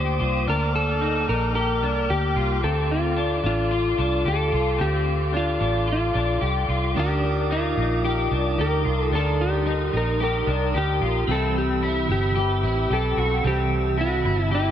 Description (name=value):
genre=dream pop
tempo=111 BPM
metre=4/4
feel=straight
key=unclear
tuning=A4 = 435 Hz
part: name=electric slide guitar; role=melody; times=0.0-14.7 s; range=E4 to C5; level=-26 LUFS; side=equal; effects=dub echo
part: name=percussive tonewheel organ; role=sustained chords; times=0.0-14.7 s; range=Bb3 to F6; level=-30 LUFS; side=right 1 dB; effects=fast rotary speaker
part: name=electric guitar at the edge of break-up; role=arpeggios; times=0.0-14.7 s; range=C4 to G4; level=-27 LUFS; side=left 4 dB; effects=analog chorus, dub echo
part: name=vintage muted fingered electric bass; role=bass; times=0.0-14.7 s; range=G1 to D2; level=-24 LUFS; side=equal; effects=none
part: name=electric guitar at the edge of break-up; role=accompaniment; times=6.9-14.7 s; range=C3 to B4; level=-32 LUFS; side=right 8 dB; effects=harmonic tremolo, lush chorus
room=light reverb, digital ambience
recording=echo-heavy mix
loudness=-20 LUFS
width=side -10 dB against mid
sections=0.0-14.7 A section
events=none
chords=0.0 Ebmaj7; 2.6 Dm7; 7.0 Ebmaj7; 11.3 Cmaj7